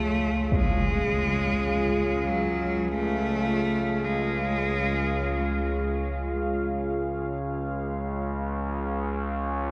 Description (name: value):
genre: dark ambient drone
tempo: free time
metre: none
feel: none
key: C# major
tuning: A4 = 438 Hz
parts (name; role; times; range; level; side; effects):
- rich cello; melody; 0.0-5.8 s; F#3 to A3; -31 LUFS; equal; tape echo
- deep dark ambient pad; sustained chords; 0.0-9.7 s; E#4 to E#5; -32 LUFS; equal; chorus, built-in reverb
- analog drone; drone; 0.0-9.7 s; C#2; -32 LUFS; equal; chorus
- impact; percussion; 0.5-0.7 s; none; -34 LUFS; equal; none
room: wet cathedral reverb, RT60 6.5 s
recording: none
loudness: -27 LUFS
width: mono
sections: 0.0-9.7 A section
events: fade-out on ambient pad 0.0-9.7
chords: 0.0 C#